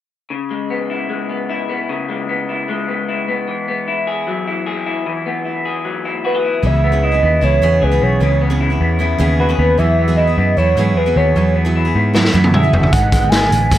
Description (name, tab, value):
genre	jangly indie pop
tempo	152 BPM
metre	4/4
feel	straight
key	unclear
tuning	A4 = 440 Hz
part	electric guitar through a small old amp	arpeggios	0.3-13.8 s	G#2 to G#4	-20 LUFS	left 3 dB	lush chorus
part	warm velvety synth lead	melody	6.3-13.8 s	B4 to G#5	-17 LUFS	right 1 dB	chorus
part	picked steel-string acoustic guitar	accompaniment	6.6-13.8 s	G#2 to G#4	-20 LUFS	right 4 dB	none
part	vintage muted picked electric bass	bass	6.6-13.8 s	F#1 to G#2	-15 LUFS	equal	none
part	raw garage drum kit	drums	12.1-13.8 s	hi-hat, kick drum, snare drum, toms	-14 LUFS	equal	none
room	light reverb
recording	none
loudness	-14 LUFS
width	side -12 dB against mid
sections	0.3-6.6 A section; 6.6-13.8 B section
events	drum fill 12.1-12.9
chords	0.3 C#m7; 3.5 Eadd9; 6.6 C#m7; 9.8 Eadd9; 12.9 G#m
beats	| 0.30 0.70 1.09 1.49 | 1.89 2.29 2.68 3.08 | 3.48 3.87 4.27 4.66 | 5.06 5.45 5.85 6.24 | 6.64 7.03 7.42 7.82 | 8.21 8.61 9.00 9.39 | 9.79 10.18 10.57 10.96 | 11.36 11.75 12.14 12.54 | 12.93 13.32 13.72